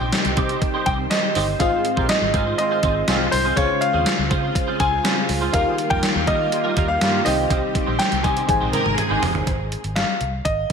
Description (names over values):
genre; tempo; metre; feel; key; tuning
1980s-style pop; 122 BPM; 4/4; straight; Ab major; A4 = 440 Hz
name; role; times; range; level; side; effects
bright concert grand piano; melody; 0.0-10.7 s; C5 to Ab5; -23 LUFS; left 1 dB; digital delay
FM electric piano with soft pad layer; accompaniment; 0.0-9.5 s; Ab2 to Ab5; -27 LUFS; left 1 dB; chorus, phaser
string machine, violas; sustained chords; 0.0-9.5 s; Db3 to C5; -28 LUFS; equal; ensemble chorus
twelve-string electric guitar; riff; 0.0-9.4 s; G3 to C5; -28 LUFS; right 5 dB; ensemble chorus, digital delay
vintage muted fingered electric bass; bass; 0.0-10.7 s; F1 to Eb3; -26 LUFS; equal; none
gated 80s digital drum machine; drums; 0.1-10.7 s; hi-hat, kick drum, snare drum, tambourine, toms; -23 LUFS; equal; gated reverb, gated reverb snare, overdrive
analog synth brass; stabs; 1.7-7.2 s; G3 to C5; -30 LUFS; right 2 dB; chorus, digital delay
warm studio violin section; second line; 8.7-9.5 s; Ab4 to Bb4; -26 LUFS; right 1 dB; digital delay
room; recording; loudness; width
light reverb, digital ambience; none; -18 LUFS; side -6 dB against mid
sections
0.0-9.5 A section; 9.5-10.7 B section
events
drum fill 8.5-9.5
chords
0.0 Cm; 1.6 Ab6; 3.6 Dbmaj7; 5.5 Ebadd9; 7.3 Cm; 8.5 Abmaj7; 9.5 Ab